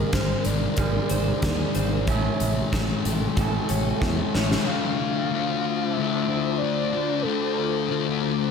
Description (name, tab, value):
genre	rock, shoegaze and dream pop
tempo	93 BPM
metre	4/4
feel	straight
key	unclear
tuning	A4 = 438 Hz
part	soft octave-layered synth lead	melody	0.0-8.5 s	A4 to F5	-30 LUFS	right 3 dB	chorus, tape echo
part	ethereal airy pad	sustained chords	0.1-8.5 s	Eb4 to D6	-33 LUFS	equal	ensemble chorus, built-in reverb
part	electric guitar through a small old amp	arpeggios	0.0-4.7 s	A4 to E5	-36 LUFS	left 2 dB	analog chorus, tape echo
part	electric guitar through a small old amp	riff	0.0-4.7 s	A2 to C5	-32 LUFS	right 13 dB	reverse reverb
part	thick fuzz guitar	riff	0.0-8.5 s	Ab2 to D4	-26 LUFS	left 10 dB	distortion, lush chorus
part	modern bright fingered electric bass	bass	0.1-4.5 s	Ab1 to E2	-27 LUFS	right 1 dB	none
part	huge arena drum kit	drums	0.1-4.7 s	hi-hat, kick drum, snare drum	-27 LUFS	right 1 dB	none
room	light reverb, small room ambience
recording	none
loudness	-22 LUFS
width	side -6 dB against mid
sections	0.0-4.7 A section; 4.7-8.5 B section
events	drum fill 4.0-4.7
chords	0.0 Abadd9; 2.1 A7; 4.7 Dm7